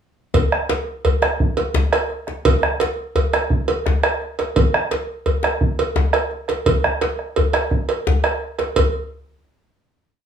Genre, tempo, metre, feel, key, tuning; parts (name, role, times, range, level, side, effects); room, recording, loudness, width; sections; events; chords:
west african traditional, West African drum ensemble; 114 BPM (dotted quarters); 12/8; straight
bombo; percussion; 0.3-8.9 s; -20 LUFS; right 2 dB
cowbell; percussion; 0.3-8.9 s; -22 LUFS; right 4 dB
djembe; percussion; 0.3-8.9 s; -22 LUFS; left 2 dB
wet studio reverb, RT60 0.6 s; small room ambience; -17 LUFS; side -8 dB against mid
0.3-8.8 A section; 8.8-10.3 final hit